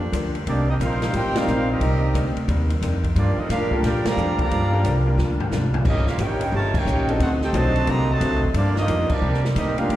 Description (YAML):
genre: jazz, big band swing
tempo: 178 BPM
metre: 4/4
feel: swing 64% on 8ths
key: G minor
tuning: A4 = 440 Hz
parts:
  - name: hollow-body jazz guitar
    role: accompaniment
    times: 0.0-10.0 s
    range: G2 to G4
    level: -29 LUFS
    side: left 4 dB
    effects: slapback echo
  - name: clear saxophone section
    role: sustained chords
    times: 0.0-10.0 s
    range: Bb2 to Eb5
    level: -33 LUFS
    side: equal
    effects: none
  - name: upright bass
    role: bass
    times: 0.0-10.0 s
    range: G1 to C3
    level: -22 LUFS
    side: equal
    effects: none
  - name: open jazz drum kit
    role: drums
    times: 0.1-10.0 s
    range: crash cymbal, hi-hat, kick drum, ride cymbal, snare drum, toms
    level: -28 LUFS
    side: left 1 dB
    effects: none
  - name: clear trumpet section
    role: melody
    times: 0.5-10.0 s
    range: Bb3 to Bb5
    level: -26 LUFS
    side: right 1 dB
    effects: slapback echo
  - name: mellow trombone section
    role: second line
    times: 0.5-10.0 s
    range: C3 to Bb4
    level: -29 LUFS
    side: right 5 dB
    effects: slapback echo
  - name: clear baby grand piano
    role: accompaniment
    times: 1.4-7.7, 9.8-10.0 s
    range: Bb3 to D5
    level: -27 LUFS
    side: left 1 dB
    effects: slapback echo
room: studio ambience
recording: live gig heard through the venue's PA, recital hall reverb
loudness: -19 LUFS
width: side -14 dB against mid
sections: 0.0-10.0 A section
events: band accent 1.3, 4.0, 6.7, 9.1; drum fill 5.2-5.9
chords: 0.5 Cm7; 3.2 Gm7; 5.9 Eb7; 7.2 D7b9; 8.6 Gm7; 9.2 Cm7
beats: 0.13 | 0.47 0.81 1.14 1.48 | 1.82 2.15 2.49 2.83 | 3.16 3.50 3.84 4.17 | 4.51 4.85 5.18 5.52 | 5.86 6.19 6.53 6.87 | 7.21 7.54 7.88 8.22 | 8.55 8.89 9.23 9.56 | 9.90